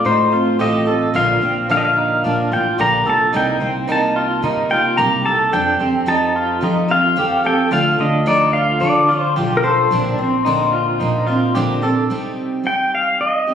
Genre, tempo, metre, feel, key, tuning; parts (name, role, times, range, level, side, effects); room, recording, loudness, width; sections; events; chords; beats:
acoustic folk duo or small band; 110 BPM; 4/4; straight; C dorian; A4 = 440 Hz
pedal steel guitar; melody; 0.0-13.5 s; Bb4 to Bb5; -17 LUFS; left 2 dB; plate reverb
picked steel-string acoustic guitar; accompaniment; 0.0-13.5 s; Bb2 to Bb4; -21 LUFS; equal
electric guitar through a small old amp; arpeggios; 0.0-12.1 s; C4 to A4; -21 LUFS; right 3 dB; tremolo, tape echo
upright bass; bass; 0.0-12.1 s; A1 to F3; -24 LUFS; equal
moderate studio reverb, RT60 0.5 s; recorded on a phone in the room, studio reverb; -14 LUFS; side -8 dB against mid
0.0-12.1 A section; 12.1-13.5 B section
0.0 F/A; 1.1 Bb; 3.3 Cm7; 5.5 Fadd9; 7.7 Dm; 9.9 Bbadd9; 12.1 Cm
0.05 0.60 | 1.15 1.69 2.24 2.79 | 3.33 3.88 4.43 4.98 | 5.53 6.07 6.62 7.17 | 7.72 8.27 8.81 9.36 | 9.91 10.46 11.01 11.56 | 12.11 12.65 13.20